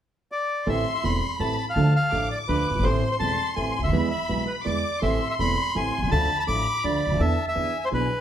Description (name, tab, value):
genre	tango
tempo	166 BPM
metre	3/4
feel	rubato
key	A harmonic minor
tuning	A4 = 440 Hz
part	bandoneon	melody	0.3-8.2 s	B4 to D6	-26 LUFS	equal	none
part	dark studio violin section	second line	0.7-8.2 s	G#5 to D6	-31 LUFS	left 3 dB	none
part	warm concert grand piano	accompaniment	0.7-8.1 s	E1 to A4	-27 LUFS	right 3 dB	none
part	upright bass	bass	0.7-8.1 s	E1 to E2	-27 LUFS	equal	none
room	wet club reverb, RT60 0.7 s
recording	heard from further back in the room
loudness	-22 LUFS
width	side -10 dB against mid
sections	0.7-8.2 A section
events	none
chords	0.0 N.C.; 0.7 Am; 1.8 Dm; 2.8 Am; 3.9 E; 5.0 Am; 6.1 Dm; 7.2 E7sus4; 7.6 E7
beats	0.31 | 0.67 1.04 1.40 | 1.76 2.12 2.48 | 2.84 3.20 3.56 | 3.93 4.29 4.66 | 5.02 5.39 5.75 | 6.12 6.48 6.84 | 7.20 7.56 7.92